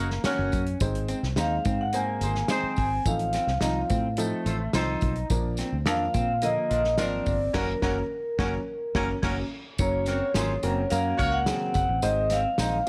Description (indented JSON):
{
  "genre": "uptempo 1960s-style soul",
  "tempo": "107 BPM",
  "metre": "4/4",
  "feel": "straight",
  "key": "unclear",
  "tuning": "A4 = 441 Hz",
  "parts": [
    { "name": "warm horn section", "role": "second line", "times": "0.0-11.4 s", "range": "Db4 to Db5", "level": "-35 LUFS", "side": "equal", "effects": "none" },
    { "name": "warm upright piano", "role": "accompaniment", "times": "0.0-12.9 s", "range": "Db3 to Db5", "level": "-34 LUFS", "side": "equal", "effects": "none" },
    { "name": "electric guitar through a small old amp", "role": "riff", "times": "0.0-12.8 s", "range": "A3 to Eb4", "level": "-36 LUFS", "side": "equal", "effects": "none" },
    { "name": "fingered electric bass", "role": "bass", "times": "0.0-12.8 s", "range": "Gb1 to Bb2", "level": "-32 LUFS", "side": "equal", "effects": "none" },
    { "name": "natural country drum kit", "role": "drums", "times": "0.1-12.9 s", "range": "crash cymbal, hi-hat, kick drum, snare drum", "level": "-33 LUFS", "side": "equal", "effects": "none" },
    { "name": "tambourine", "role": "percussion", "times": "0.2-12.9 s", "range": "none", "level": "-44 LUFS", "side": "equal", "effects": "none" },
    { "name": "vibraphone with medium hard mallets", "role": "melody", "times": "1.4-12.9 s", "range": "Bb4 to Ab5", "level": "-30 LUFS", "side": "equal", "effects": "none" }
  ],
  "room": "studio ambience",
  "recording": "none",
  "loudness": "-26 LUFS",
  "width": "mono",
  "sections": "0.0-9.8 A section; 9.8-12.9 B section",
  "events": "band accent 7.5-9.8",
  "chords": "0.0 Gb; 0.8 Ab; 3.1 F7/A; 5.3 Bb; 7.5 Gb; 12.0 Ab"
}